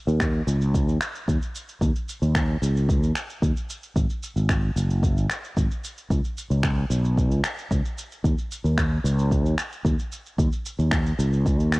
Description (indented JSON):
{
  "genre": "sunset chillout",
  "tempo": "112 BPM",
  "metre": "4/4",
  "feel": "straight",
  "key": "Eb minor",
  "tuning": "A4 = 439 Hz",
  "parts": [
    { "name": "sustaining fretless electric bass", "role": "bass", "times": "0.1-11.8 s", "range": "Gb1 to Eb2", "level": "-22 LUFS", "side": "equal", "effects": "wide subtle chorus" },
    { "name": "electronic shaker and finger snaps", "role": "drums", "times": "0.1-11.8 s", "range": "none", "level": "-32 LUFS", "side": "equal", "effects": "none" },
    { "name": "electronic kick drum", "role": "drums", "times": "0.2-11.6 s", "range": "none", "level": "-25 LUFS", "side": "equal", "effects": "none" }
  ],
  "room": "little or no reverb",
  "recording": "worn, warbling old tape, cassette tape, warbly pitch drift",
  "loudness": "-22 LUFS",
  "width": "side -23 dB against mid",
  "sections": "0.0-11.8 A section",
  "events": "none",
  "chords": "none",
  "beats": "0.21 0.74 1.28 | 1.81 2.35 2.89 3.42 | 3.96 4.49 5.03 5.56 | 6.10 6.64 7.17 7.71 | 8.24 8.78 9.31 9.85 | 10.39 10.92 11.46"
}